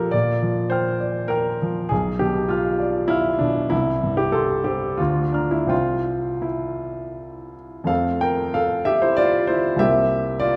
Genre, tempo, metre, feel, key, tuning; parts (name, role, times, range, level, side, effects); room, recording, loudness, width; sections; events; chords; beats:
classical, romantic character piece for solo piano; 80-104 BPM; 3/4; rubato; F major; A4 = 440 Hz
warm baby grand piano; solo; 0.0-10.6 s; B1 to F6; -22 LUFS; equal
wet recital hall reverb, RT60 1.6 s; lossy compression artefacts; -21 LUFS; mono
0.0-7.9 A section; 7.9-10.6 B section
0.1 Gm7/Bb; 1.9 Bdim; 3.7 C5; 5.0 Bb/D; 5.7 C; 7.9 F; 9.8 C7
| 0.14 0.72 1.31 | 1.91 2.50 3.10 | 3.71 4.33 4.99 | 5.70 6.44 7.17 | 7.89 8.55 9.19 | 9.81 10.42